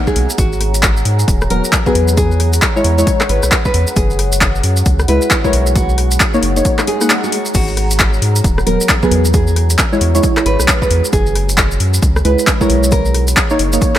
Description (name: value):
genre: UK garage, two-step garage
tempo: 134 BPM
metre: 4/4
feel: swing 61% on 16ths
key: G# minor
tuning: A4 = 440 Hz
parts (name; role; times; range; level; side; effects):
- deep dark ambient pad; texture; 0.0-14.0 s; G#4 to B5; -24 LUFS; equal; chorus, built-in reverb, sidechain pumping
- nylon-string guitar; melody; 0.1-13.3 s; F#4 to B4; -22 LUFS; right 2 dB; tape echo
- electronic kick drum; drums; 0.1-13.9 s; none; -16 LUFS; equal; overdrive
- maracas; percussion; 0.1-14.0 s; none; -24 LUFS; right 1 dB; none
- saturated sub bass; bass; 0.2-13.8 s; D#1 to G#2; -15 LUFS; equal; sidechain pumping
- punchy analog drum machine; drums; 0.2-14.0 s; crash cymbal, handclaps, hi-hat, rim click; -17 LUFS; left 1 dB; overdrive
- deep mellow chord stab; stabs; 1.5-14.0 s; F#3 to F#5; -17 LUFS; equal; chorus, tape echo
- swell; sound effects; 6.8-7.5 s; none; -26 LUFS; right 2 dB; none
room: moderate lush hall reverb, RT60 1.9 s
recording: dreamy mix soaked in reverb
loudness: -11 LUFS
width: side -12 dB against mid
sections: 0.0-14.0 A section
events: swell 6.8-7.5; kick drops out 7.1-7.5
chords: 0.4 G#m9; 2.2 E6; 4.0 F#9sus4; 5.8 Bmaj9; 7.5 G#m9; 9.3 E6; 11.1 F#9sus4; 12.9 Bmaj9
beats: | 0.38 0.83 1.28 1.73 | 2.17 2.62 3.07 3.52 | 3.96 4.41 4.86 5.31 | 5.76 6.20 6.65 7.10 | 7.55 8.00 8.44 8.89 | 9.34 9.79 10.23 10.68 | 11.13 11.58 12.03 12.47 | 12.92 13.37 13.82